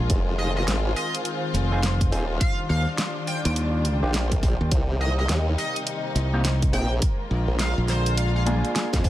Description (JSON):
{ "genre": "glitch hop", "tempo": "104 BPM", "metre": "4/4", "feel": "swing 62% on 16ths", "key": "unclear", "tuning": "A4 = 445 Hz", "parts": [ { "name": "warm studio string section", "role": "sustained chords", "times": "0.0-9.1 s", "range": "C3 to F4", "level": "-32 LUFS", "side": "left 2 dB", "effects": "sidechain pumping" }, { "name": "modern bright fingered electric bass", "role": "bass", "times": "0.0-8.6 s", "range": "F1 to Eb2", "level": "-23 LUFS", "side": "equal", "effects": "none" }, { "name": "airy breathy pad", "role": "texture", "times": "0.0-9.1 s", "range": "Eb3 to Bb5", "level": "-33 LUFS", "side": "left 1 dB", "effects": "chorus, sidechain pumping" }, { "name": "formant-sweep wobble bass", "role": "bass", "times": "0.1-9.1 s", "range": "Eb1 to F2", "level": "-24 LUFS", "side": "equal", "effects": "chorus" }, { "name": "electronic kick drum", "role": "drums", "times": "0.1-9.1 s", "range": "none", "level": "-23 LUFS", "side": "equal", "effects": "none" }, { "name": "pop drum kit", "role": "drums", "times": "0.1-9.1 s", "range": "hi-hat, snare drum, toms", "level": "-29 LUFS", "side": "equal", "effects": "none" }, { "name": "sync lead", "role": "melody", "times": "0.4-8.4 s", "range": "C5 to G5", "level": "-32 LUFS", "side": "right 1 dB", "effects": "lush chorus, digital delay" }, { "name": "mellow electric guitar", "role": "stabs", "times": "1.7-9.1 s", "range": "Bb3 to Ab4", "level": "-30 LUFS", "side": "right 1 dB", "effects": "sidechain pumping, digital delay" } ], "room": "little or no reverb", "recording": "none", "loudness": "-21 LUFS", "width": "side -14 dB against mid", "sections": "0.0-9.1 A section", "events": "drum fill 8.5-9.1", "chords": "0.1 Fm7; 2.4 Ebmaj9; 7.0 Bb7", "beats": "| 0.10 0.68 1.25 1.83 | 2.41 2.98 3.56 4.14 | 4.71 5.29 5.87 6.45 | 7.02 7.60 8.18 8.75" }